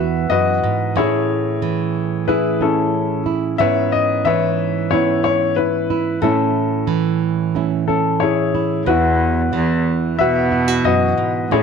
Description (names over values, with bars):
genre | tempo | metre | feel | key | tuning
folk | 91 BPM | 4/4 | straight | E major | A4 = 440 Hz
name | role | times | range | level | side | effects
clear concert grand piano | melody | 0.0-11.6 s | C#4 to E5 | -18 LUFS | left 8 dB | none
nylon-string guitar | accompaniment | 0.0-11.6 s | E2 to F#4 | -19 LUFS | right 9 dB | none
warm cello | bass | 8.9-11.6 s | E2 to B2 | -19 LUFS | right 1 dB | none
room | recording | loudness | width
wet spring reverb, RT60 1.4 s, small room ambience | 1960s-style stereo with parts hard left and right | -15 LUFS | side -6 dB against mid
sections
0.0-11.6 A section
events
none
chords
0.0 Esus2; 1.0 Amaj7; 3.6 C#m7/G#; 6.2 Amaj7; 8.9 Esus2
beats
0.30 | 0.96 1.62 2.28 2.94 | 3.59 4.25 4.90 5.56 | 6.22 6.88 7.54 8.20 | 8.86 9.53 10.19 10.85 | 11.51